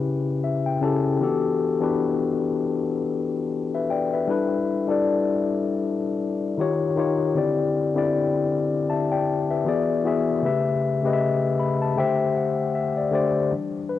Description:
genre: R&B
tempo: 78 BPM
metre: 4/4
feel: swing 58% on 16ths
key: unclear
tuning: A4 = 440 Hz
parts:
  - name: mellow tine electric piano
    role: solo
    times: 0.0-14.0 s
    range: C#3 to B5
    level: -21 LUFS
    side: left 4 dB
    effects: fast stereo tremolo, cassette tape, analog delay
room: moderate studio ambience, RT60 0.5 s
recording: home recording on cassette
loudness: -21 LUFS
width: side -12 dB against mid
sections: 0.0-13.5 A section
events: tine electric piano fill 0.1-1.2, 11.2-13.5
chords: 0.0 A9/C#; 1.2 Em11; 4.3 G69; 6.6 D#9; 7.4 D9sus4; 9.7 E9; 10.4 A9/C#; 12.0 D7sus4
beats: 0.44 | 1.21 1.98 2.75 3.52 | 4.29 5.05 5.82 6.59 | 7.36 8.13 8.90 9.67 | 10.44 11.21 11.98 12.75 | 13.52

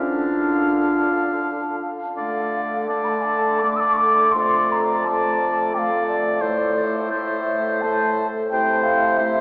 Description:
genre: classical, slow romantic movement for wind quintet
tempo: 85 BPM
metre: 3/4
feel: uneven beats, rubato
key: D minor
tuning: A4 = 440 Hz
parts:
  - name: mellow hollow wooden flute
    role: melody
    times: 0.0-9.4 s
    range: D5 to E6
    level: -22 LUFS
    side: equal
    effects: none
  - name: clear oboe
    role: second line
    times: 0.0-9.4 s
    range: C5 to F5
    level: -24 LUFS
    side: equal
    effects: none
  - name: mellow French horn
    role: accompaniment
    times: 0.0-9.4 s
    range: A3 to F4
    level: -27 LUFS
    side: equal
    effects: none
  - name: mellow clarinet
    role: accompaniment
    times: 0.0-9.4 s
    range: D4 to A4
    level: -27 LUFS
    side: equal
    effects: none
  - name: warm bassoon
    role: bass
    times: 0.0-9.4 s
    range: F2 to D3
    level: -26 LUFS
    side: equal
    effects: none
room: wet cathedral reverb, RT60 4.9 s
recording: heard from further back in the room, AM radio sound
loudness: -18 LUFS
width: side -28 dB against mid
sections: 0.0-2.2 A section; 2.2-9.4 B section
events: none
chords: 0.0 Dm; 4.3 Dm/F; 6.4 Am; 8.5 Am/C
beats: 0.62 1.41 | 2.17 2.89 3.62 | 4.35 5.05 5.74 | 6.41 7.10 7.83 | 8.52 9.20

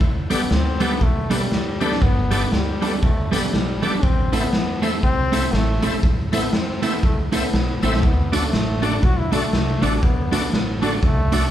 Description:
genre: ska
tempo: 120 BPM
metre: 4/4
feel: swing 59% on 8ths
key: G major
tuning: A4 = 440 Hz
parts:
  - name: upright bass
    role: bass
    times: 0.0-11.5 s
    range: E1 to E2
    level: -25 LUFS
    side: equal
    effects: none
  - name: raw garage drum kit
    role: drums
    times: 0.0-11.4 s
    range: hi-hat, kick drum, snare drum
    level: -21 LUFS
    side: equal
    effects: none
  - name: clear trombone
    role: melody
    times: 0.3-11.5 s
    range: G3 to F#4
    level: -27 LUFS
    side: left 2 dB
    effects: none
  - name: electric guitar at the edge of break-up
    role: accompaniment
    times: 0.3-11.4 s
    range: G3 to A4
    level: -25 LUFS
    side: right 3 dB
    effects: tremolo
  - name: bright tonewheel organ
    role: stabs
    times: 0.3-11.4 s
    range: D4 to E5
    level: -27 LUFS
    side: left 2 dB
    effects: overdrive, chorus vibrato, slow rotary speaker
room: moderate large studio reverb, RT60 1.4 s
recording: band playing live in one room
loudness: -17 LUFS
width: side -11 dB against mid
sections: 0.0-11.5 A section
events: none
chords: 0.0 Gadd9; 4.0 Am; 8.0 D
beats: | 0.01 0.52 1.02 1.52 | 2.02 2.52 3.03 3.53 | 4.03 4.53 5.03 5.53 | 6.03 6.53 7.03 7.53 | 8.03 8.53 9.03 9.53 | 10.03 10.53 11.03

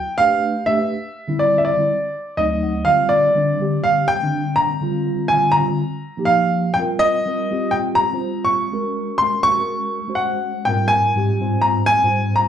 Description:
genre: jazz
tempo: 123 BPM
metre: 4/4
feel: swing 54% on 16ths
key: unclear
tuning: A4 = 440 Hz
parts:
  - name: bright baby grand piano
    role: melody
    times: 0.0-12.5 s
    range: D5 to C#6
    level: -18 LUFS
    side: equal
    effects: slapback echo, plate reverb
  - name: mellow tine electric piano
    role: accompaniment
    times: 0.2-12.5 s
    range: D2 to F#5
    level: -22 LUFS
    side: equal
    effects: medium stereo tremolo, lush chorus, slapback echo
room: moderate club reverb, RT60 0.5 s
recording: live gig heard through the venue's PA, club reverb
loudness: -16 LUFS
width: side -9 dB against mid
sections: 0.0-2.9 A section; 2.9-12.5 B section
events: tine electric piano fill 2.1-2.9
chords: 0.0 G13/A; 0.9 D9sus4; 1.9 D7b9; 2.9 Bb69/D; 5.8 F9sus4; 6.8 Cm7; 8.7 F#add9; 10.7 Abmaj13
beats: 0.44 | 0.93 1.42 1.91 2.39 | 2.88 3.37 3.86 4.34 | 4.83 5.32 5.80 6.29 | 6.78 7.26 7.75 8.24 | 8.72 9.21 9.70 10.19 | 10.67 11.16 11.65 12.14

